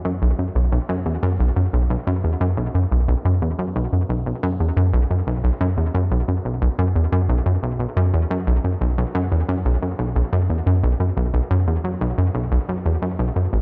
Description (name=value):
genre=ambient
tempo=89 BPM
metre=4/4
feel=straight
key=unclear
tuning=A4 = 441 Hz
part: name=plucky analog bass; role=solo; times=0.1-13.6 s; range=A1 to F#2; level=-21 LUFS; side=equal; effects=analog delay
room=light reverb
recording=echo-heavy mix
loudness=-21 LUFS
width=mono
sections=0.0-13.6 A section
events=none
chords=none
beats=| 0.05 0.72 1.40 2.07 | 2.75 3.42 4.09 4.77 | 5.44 6.12 6.79 7.46 | 8.14 8.81 9.49 10.16 | 10.84 11.51 12.18 12.86 | 13.53